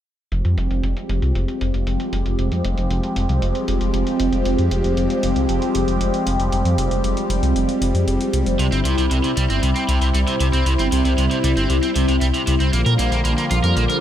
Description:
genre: synthwave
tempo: 116 BPM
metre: 4/4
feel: straight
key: F dorian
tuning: A4 = 441 Hz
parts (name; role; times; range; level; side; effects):
- phased analog pad; sustained chords; 0.3-14.0 s; D3 to G4; -21 LUFS; equal; phaser, chorus
- dark detuned saw bass; bass; 0.3-13.9 s; F1 to Bb2; -20 LUFS; equal; none
- electronic hi-hat; drums; 0.3-14.0 s; none; -33 LUFS; equal; overdrive, low-pass filter on hats, low-pass filter on room
- crunchy overdriven guitar; riff; 8.6-14.0 s; C3 to Bb4; -23 LUFS; right 2 dB; analog chorus, vintage 12-bit sampler grit, digital delay
room: moderate lush hall reverb, RT60 2.5 s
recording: bright 1980s-style digital production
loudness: -17 LUFS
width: side -11 dB against mid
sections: 0.3-14.0 A section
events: filter sweep on detuned saw bass 0.3-14.0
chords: 0.3 Fmadd9; 8.6 C; 12.7 Bb6

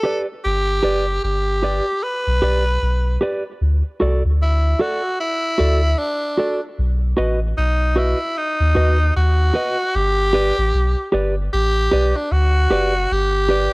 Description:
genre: roots reggae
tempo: 76 BPM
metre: 4/4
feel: swing 60% on 16ths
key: G major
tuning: A4 = 440 Hz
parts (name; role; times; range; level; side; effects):
- raspy tenor saxophone; melody; 0.0-13.7 s; D4 to B4; -20 LUFS; equal; cassette tape
- mellow electric guitar; accompaniment; 0.0-13.7 s; F#4 to D#5; -21 LUFS; right 1 dB; cassette tape
- soft dub sub bass; bass; 0.5-13.7 s; F#1 to D#2; -18 LUFS; equal; transformer saturation
room: light reverb, small room ambience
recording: home recording on cassette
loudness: -16 LUFS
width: side -26 dB against mid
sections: 0.0-9.9 A section; 9.9-13.7 B section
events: none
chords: 0.0 G; 3.6 D; 6.8 B; 9.9 G

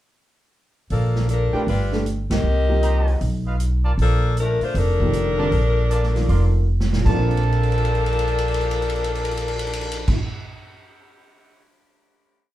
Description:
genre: jazz, big band swing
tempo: 156 BPM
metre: 4/4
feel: swing 65% on 8ths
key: Bb major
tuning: A4 = 439 Hz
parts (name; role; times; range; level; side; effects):
- warm saxophone section; melody; 0.9-10.1 s; F3 to Eb5; -24 LUFS; left 3 dB; none
- upright bass; bass; 0.9-10.1 s; F1 to C2; -20 LUFS; equal; none
- swinging big-band drum kit; drums; 0.9-11.6 s; crash cymbal, hi-hat, kick drum, ride cymbal, snare drum; -27 LUFS; right 1 dB; none
- warm baby grand piano; accompaniment; 1.5-10.2 s; Bb2 to Cb5; -27 LUFS; right 1 dB; none
- warm trumpet section; stabs; 1.5-10.1 s; F4 to C6; -30 LUFS; right 4 dB; none
room: moderate club reverb, RT60 0.5 s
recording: heard from further back in the room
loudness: -18 LUFS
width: side -14 dB against mid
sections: 0.9-7.1 A section; 7.1-10.1 final chord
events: band accent 2.2; drum fill 6.7-7.1, 7.2-10.0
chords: 0.9 Bbmaj7; 1.7 G7; 2.4 Cm7; 3.2 B(#11); 4.0 Bbmaj7

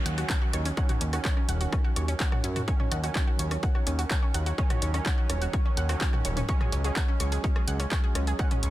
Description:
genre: melodic techno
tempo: 126 BPM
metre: 4/4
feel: straight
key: Eb minor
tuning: A4 = 440 Hz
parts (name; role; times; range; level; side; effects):
- sync-sweep polysynth; stabs; 0.0-8.7 s; Eb3 to Db4; -35 LUFS; right 5 dB; chorus, cassette tape, sidechain pumping, tape echo
- downlifter; sound effects; 0.0-2.7 s; none; -43 LUFS; equal; none
- analog pluck; arpeggios; 0.1-8.7 s; Db4 to Gb6; -36 LUFS; equal; chorus, sidechain pumping, tape echo
- fat analog bass; bass; 0.1-8.7 s; Eb1 to Gb2; -28 LUFS; equal; tube saturation, sidechain pumping
- punchy analog drum machine; drums; 0.1-8.7 s; handclaps, hi-hat, rim click, toms; -34 LUFS; right 1 dB; none
- electronic kick drum; drums; 0.3-8.5 s; none; -26 LUFS; equal; overdrive
room: little or no reverb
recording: dense, heavily limited modern master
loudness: -24 LUFS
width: side -15 dB against mid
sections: 0.0-8.7 A section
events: none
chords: 0.0 Ebm7; 6.5 Dbsus4

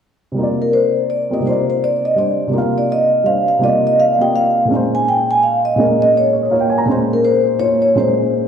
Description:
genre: jazz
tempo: 166 BPM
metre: 3/4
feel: swing 63% on 8ths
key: C phrygian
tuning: A4 = 440 Hz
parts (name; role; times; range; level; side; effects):
- dark baby grand piano; accompaniment; 0.3-8.5 s; Bb2 to Bb5; -17 LUFS; right 1 dB; none
- vibraphone with soft mallets; melody; 0.6-8.5 s; Bb4 to Ab5; -14 LUFS; equal; none
room: wet recital hall reverb, RT60 1.5 s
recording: recorded in a church or concert hall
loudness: -13 LUFS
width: side -8 dB against mid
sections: 0.4-8.5 A section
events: none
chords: 0.4 Cm11; 4.7 Bbm11

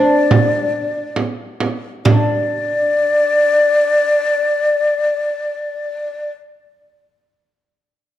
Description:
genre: Arabic maqam ensemble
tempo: 66-73 BPM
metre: 4/4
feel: straight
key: unclear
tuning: A4 = 440 Hz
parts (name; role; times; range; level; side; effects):
- oud; melody; 0.0-6.3 s; D4; -18 LUFS; equal; none
- breathy mellow ney; second line; 0.0-6.3 s; D5; -15 LUFS; left 2 dB; none
- frame drum; percussion; 0.3-2.5 s; none; -17 LUFS; right 3 dB; none
room: wet recital hall reverb, RT60 1.6 s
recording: dark, warm production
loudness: -14 LUFS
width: side -12 dB against mid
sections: 0.0-2.1 A section; 2.1-5.7 B section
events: slowing down 0.0-2.1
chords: none

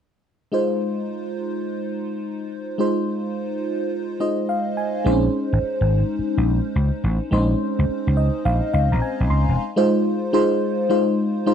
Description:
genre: R&B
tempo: 106 BPM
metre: 4/4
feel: swing 66% on 16ths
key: unclear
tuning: A4 = 440 Hz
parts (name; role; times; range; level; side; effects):
- FM electric piano with soft pad layer; accompaniment; 0.5-11.5 s; Ab3 to C6; -21 LUFS; equal; chorus, phaser
- vintage slap bass; bass; 5.1-9.6 s; E1 to Db2; -19 LUFS; equal; none
room: little or no reverb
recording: dry, close 1970s-style studio recording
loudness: -19 LUFS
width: side -8 dB against mid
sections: 0.5-9.6 A section; 9.6-11.5 B section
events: FM electric piano fill 3.9-5.1, 7.9-9.6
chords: 0.5 Fm7; 5.1 Bbm11; 9.6 Fm7

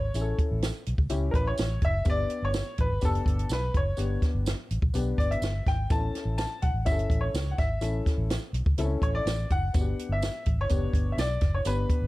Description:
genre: uptempo 1960s-style soul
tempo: 125 BPM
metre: 4/4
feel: straight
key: A mixolydian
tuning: A4 = 440 Hz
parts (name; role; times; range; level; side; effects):
- bright baby grand piano; melody; 0.0-12.1 s; A4 to A5; -32 LUFS; left 1 dB; none
- vintage muted fingered electric bass; bass; 0.0-12.1 s; F#1 to C#2; -28 LUFS; equal; none
- dark upright piano; accompaniment; 0.1-12.1 s; B3 to A4; -34 LUFS; left 4 dB; none
- tambourine; percussion; 0.1-11.8 s; none; -44 LUFS; right 5 dB; none
- compact cocktail drum kit; drums; 0.2-12.0 s; hi-hat, kick drum, snare drum; -28 LUFS; equal; none
room: small room ambience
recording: dark, warm production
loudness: -25 LUFS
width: side -18 dB against mid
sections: 0.0-12.1 A section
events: none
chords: 0.0 A; 2.1 G; 5.9 A; 9.7 G

